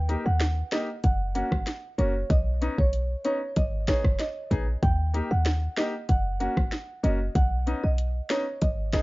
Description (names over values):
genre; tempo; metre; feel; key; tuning
dancehall; 95 BPM; 4/4; straight; unclear; A4 = 440 Hz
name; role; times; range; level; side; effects
short 808-style bass; bass; 0.0-9.0 s; F#1 to D#2; -26 LUFS; equal; none
clear baby grand piano; accompaniment; 0.1-9.0 s; A#3 to G#4; -31 LUFS; left 2 dB; none
afro-pop drum kit; drums; 0.1-9.0 s; hi-hat, kick drum, rim click, snare drum; -26 LUFS; equal; none
marimba with medium mallets; melody; 0.3-9.0 s; C#5 to G5; -32 LUFS; right 2 dB; tape echo
room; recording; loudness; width
little or no reverb; dark, warm production, nothing above 7.5 kHz; -24 LUFS; side -21 dB against mid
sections
0.0-9.0 A section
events
none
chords
0.0 D#; 1.0 F#; 2.3 Badd9; 3.6 G#m; 4.8 D#; 6.1 F#; 7.4 Badd9